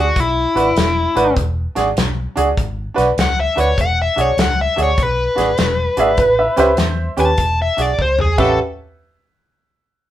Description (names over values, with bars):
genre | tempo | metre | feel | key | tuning
electric blues shuffle | 100 BPM | 4/4 | swing 66% on 8ths | unclear | A4 = 440 Hz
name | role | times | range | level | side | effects
smooth overdriven lead guitar | melody | 0.0-8.6 s | E4 to A5 | -18 LUFS | left 2 dB | none
bright concert grand piano | accompaniment | 0.0-8.6 s | C#4 to B4 | -17 LUFS | right 2 dB | none
vintage muted fingered electric bass | bass | 0.0-8.6 s | E1 to E2 | -21 LUFS | equal | none
natural country drum kit | drums | 0.2-8.5 s | crash cymbal, hi-hat, kick drum, snare drum, toms | -21 LUFS | equal | none
warm upright piano | second line | 6.0-8.6 s | B4 to E5 | -16 LUFS | right 1 dB | none
room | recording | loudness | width
moderate studio reverb, RT60 0.5 s | band playing live in one room | -14 LUFS | side -12 dB against mid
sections
0.0-8.6 A section; 8.6-10.1 B section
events
drum fill 8.0-8.6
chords
0.0 E7; 6.2 A7; 7.4 E7; 8.3 A13; 8.6 N.C.